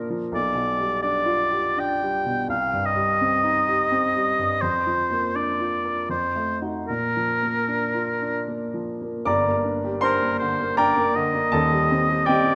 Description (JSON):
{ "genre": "classical, romantic duo for oboe and grand piano", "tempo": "74-89 BPM", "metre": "3/4", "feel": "rubato", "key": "unclear", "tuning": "A4 = 440 Hz", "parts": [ { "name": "clear baby grand piano", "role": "accompaniment", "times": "0.0-12.6 s", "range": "Eb1 to D6", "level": "-26 LUFS", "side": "equal", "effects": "none" }, { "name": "warm oboe", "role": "melody", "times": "0.3-12.6 s", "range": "Bb4 to G5", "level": "-25 LUFS", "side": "equal", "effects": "none" } ], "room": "moderate recital hall reverb, RT60 1.5 s", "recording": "none", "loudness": "-23 LUFS", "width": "mono", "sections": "0.0-9.3 A section; 9.3-12.6 B section", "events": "none", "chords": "0.3 G7/B; 2.5 Cm; 4.6 Bb/F; 6.1 F7b9; 6.9 Bb; 9.3 Gm; 11.5 Cm/Eb" }